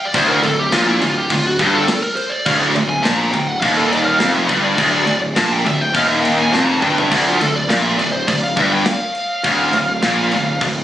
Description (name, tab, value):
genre	heavy metal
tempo	103 BPM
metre	4/4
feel	straight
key	D minor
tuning	A4 = 440 Hz
part	high-gain lead guitar	melody	0.0-10.6 s	E4 to Bb5	-19 LUFS	equal	distortion, tape echo
part	heavy high-gain guitar	riff	0.1-10.8 s	D2 to Bb2	-20 LUFS	left 6 dB	distortion
part	tight distorted guitar	riff	0.1-10.8 s	D2 to Bb2	-20 LUFS	equal	distortion
part	fuzz picked electric bass	bass	0.1-10.8 s	D1 to Bb1	-24 LUFS	equal	overdrive
part	tight metal drum kit	drums	0.1-10.8 s	crash cymbal, kick drum, snare drum, toms	-23 LUFS	right 1 dB	none
part	heavy high-gain guitar	riff	0.2-10.8 s	D2 to Bb2	-23 LUFS	right 6 dB	distortion
room	studio ambience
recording	recorded on a phone in the room, studio reverb, nothing above 10.4 kHz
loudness	-14 LUFS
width	side -12 dB against mid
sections	0.0-10.8 A section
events	lead electric guitar solo 0.0-10.8; drum fill 6.5-7.1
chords	0.0 Dm